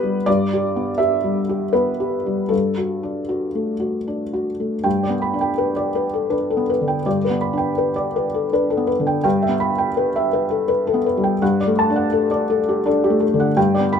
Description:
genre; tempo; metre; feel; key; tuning
neoclassical minimalist piano; 76-85 BPM; 3/4; rubato; G major; A4 = 440 Hz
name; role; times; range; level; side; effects
felt-muted upright piano; solo; 0.0-14.0 s; G2 to B5; -17 LUFS; left 1 dB; none
room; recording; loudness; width
light reverb; minimal, uncompressed stereo recording; -17 LUFS; side -7 dB against mid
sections
0.0-4.9 A section; 4.9-14.0 B section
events
none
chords
0.0 G; 2.5 D/G; 4.9 G; 9.2 Em/G; 11.4 D/G

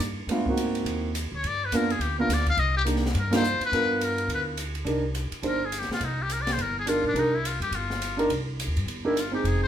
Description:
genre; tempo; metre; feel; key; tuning
jazz, small-group swing and bop; 209 BPM; 4/4; swing 60% on 8ths; C minor; A4 = 440 Hz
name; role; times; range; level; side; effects
upright bass; bass; 0.0-9.7 s; F1 to Ab2; -30 LUFS; equal; none
open jazz drum kit; drums; 0.0-9.5 s; hi-hat, kick drum, ride cymbal, snare drum; -33 LUFS; equal; none
warm grand piano; accompaniment; 0.3-9.7 s; A3 to C5; -27 LUFS; right 2 dB; none
trumpet with metal mute; melody; 1.4-9.7 s; D4 to F5; -28 LUFS; left 4 dB; none
room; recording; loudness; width
moderate large studio reverb, RT60 1.0 s; band playing live in one room; -24 LUFS; side -10 dB against mid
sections
0.0-4.9 A section; 4.9-9.7 A section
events
band accent 3.3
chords
0.3 Ab7; 1.4 G7#9; 2.6 Cm9; 3.7 G7#9; 4.9 Cm9

